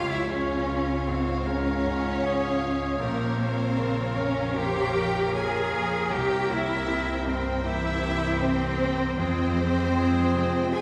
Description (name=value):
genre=cinematic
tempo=78 BPM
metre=4/4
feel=rubato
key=unclear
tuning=A4 = 440 Hz
part: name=warm symphonic violin section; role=melody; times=0.0-10.8 s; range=F5 to G5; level=-42 LUFS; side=equal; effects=none
part: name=clear studio violin section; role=second line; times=0.0-10.8 s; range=Bb4 to Ab5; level=-38 LUFS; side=equal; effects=none
part: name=warm oboe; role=second line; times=0.0-10.8 s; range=F4 to Db5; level=-38 LUFS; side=equal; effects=none
part: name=clear concert grand piano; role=accompaniment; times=0.0-10.8 s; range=Bb1 to G5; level=-35 LUFS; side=equal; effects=none
part: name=warm symphonic viola section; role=accompaniment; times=0.0-10.8 s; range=Ab3 to Db5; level=-37 LUFS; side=equal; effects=none
part: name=mellow French horn section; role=sustained chords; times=0.0-10.8 s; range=Ab3 to Ab4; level=-36 LUFS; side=equal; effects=none
part: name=concert harp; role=arpeggios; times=0.0-10.8 s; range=Bb2 to C6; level=-40 LUFS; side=equal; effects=none
part: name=rich studio double bass section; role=bass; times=0.0-10.8 s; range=Bb1 to F2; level=-34 LUFS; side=equal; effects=none
part: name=warm symphonic cello section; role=bass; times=0.0-10.8 s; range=Bb3 to Ab4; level=-30 LUFS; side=equal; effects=none
room=wet scoring stage reverb, RT60 1.7 s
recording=recorded in a church or concert hall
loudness=-26 LUFS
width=mono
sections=0.0-10.8 A section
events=none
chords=0.0 Db; 3.0 Bbm; 6.1 C7; 9.2 Fmadd9